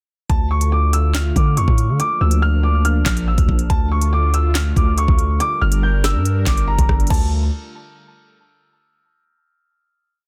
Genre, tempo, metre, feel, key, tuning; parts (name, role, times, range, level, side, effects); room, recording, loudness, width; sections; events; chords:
hip hop, drill; 141 BPM; 4/4; half-time; D harmonic minor; A4 = 438 Hz
dark baby grand piano; melody; 0.3-7.3 s; A5 to G6; -25 LUFS; equal; delay
warm analog pad; sustained chords; 0.3-7.3 s; D3 to Bb4; -30 LUFS; equal; chorus, tremolo
long sustained 808-style bass; bass; 0.3-7.5 s; G1 to D3; -19 LUFS; equal
drill drum kit; drums; 0.3-7.2 s; crash cymbal, handclaps, hi-hat, kick drum, rim click, snare drum; -21 LUFS; equal
little or no reverb; dense, heavily limited modern master; -17 LUFS; mono
0.3-7.1 hook; 7.1-8.8 final chord
0.3 Dm; 2.0 Bb; 3.7 Dm; 5.4 Gm; 7.1 Dm